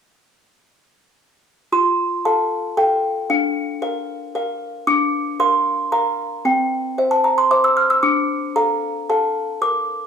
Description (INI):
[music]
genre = classical, lullaby for music box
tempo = 114 BPM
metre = 3/4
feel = straight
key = F major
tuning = A4 = 440 Hz
[part]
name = music box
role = solo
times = 1.7-10.1 s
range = C4 to F6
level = -17 LUFS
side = equal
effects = none
[sound]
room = wet large studio reverb, RT60 1.2 s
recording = band playing live in one room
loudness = -17 LUFS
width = side -7 dB against mid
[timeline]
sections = 1.7-10.1 A section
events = none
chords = 1.7 F; 3.3 Bb/D; 6.4 C; 8.0 Dm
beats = | 1.72 2.25 2.77 | 3.29 3.82 4.34 | 4.86 5.39 5.92 | 6.45 6.97 7.50 | 8.03 8.56 9.09 | 9.61